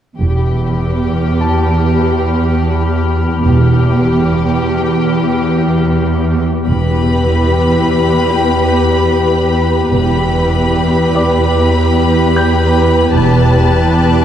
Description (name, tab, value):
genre	cinematic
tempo	74 BPM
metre	4/4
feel	straight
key	E minor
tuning	A4 = 438 Hz
part	clear studio violin section	melody	0.2-14.2 s	G4 to B5	-20 LUFS	left 3 dB	none
part	rich symphonic cello section	bass	0.2-14.2 s	E2	-13 LUFS	right 1 dB	none
part	rich symphonic double bass section	bass	0.2-13.9 s	E1	-17 LUFS	right 2 dB	none
part	clear symphonic violin section	texture	0.2-6.2, 13.2-14.2 s	B5 to F#6	-28 LUFS	left 5 dB	none
part	bright concert grand piano	texture	1.4-14.2 s	G4 to G6	-24 LUFS	left 1 dB	none
part	warm symphonic violin section	second line	6.7-14.2 s	G4 to B4	-15 LUFS	left 1 dB	none
room	wet cathedral reverb, RT60 6.2 s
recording	dark, warm production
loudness	-10 LUFS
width	side -10 dB against mid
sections	0.2-6.7 A section; 6.7-14.2 B section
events	none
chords	0.2 Em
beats	| 0.19 1.00 1.81 2.62 | 3.43 4.24 5.05 5.87 | 6.67 7.49 8.30 9.11 | 9.92 10.73 11.54 12.35 | 13.16 13.97